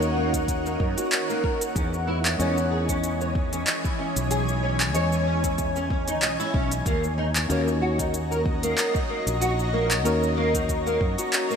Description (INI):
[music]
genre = organic downtempo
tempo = 94 BPM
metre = 4/4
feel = swing 55% on 16ths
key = unclear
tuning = A4 = 441 Hz
[part]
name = muted felt-like synth keys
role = accompaniment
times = 0.0-11.6 s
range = E3 to D#5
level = -32 LUFS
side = left 2 dB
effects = chorus, sidechain pumping, ping-pong delay
[part]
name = granular cloud pad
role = sustained chords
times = 0.0-11.6 s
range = E3 to A#5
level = -29 LUFS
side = equal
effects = built-in reverb, vintage 12-bit sampler grit, sidechain pumping
[part]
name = mellow fretless electric bass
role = bass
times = 0.0-11.2 s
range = A#1 to F#2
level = -27 LUFS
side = equal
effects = sidechain pumping
[part]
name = deep house drum kit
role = drums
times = 0.0-11.6 s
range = handclaps, hi-hat, shaker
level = -28 LUFS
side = equal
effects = none
[part]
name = flamenco guitar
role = arpeggios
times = 0.2-11.6 s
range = A#3 to D#5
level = -28 LUFS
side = right 1 dB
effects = ensemble chorus, low-pass filter, ping-pong delay
[part]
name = electronic kick drum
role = drums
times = 0.3-11.1 s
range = none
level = -28 LUFS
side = equal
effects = none
[sound]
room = moderate lush hall reverb, RT60 3.0 s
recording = bright 1980s-style digital production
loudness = -22 LUFS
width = side -7 dB against mid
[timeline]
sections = 0.0-11.6 A section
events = none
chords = 0.0 D#m7; 1.8 C#madd9; 6.9 D#m7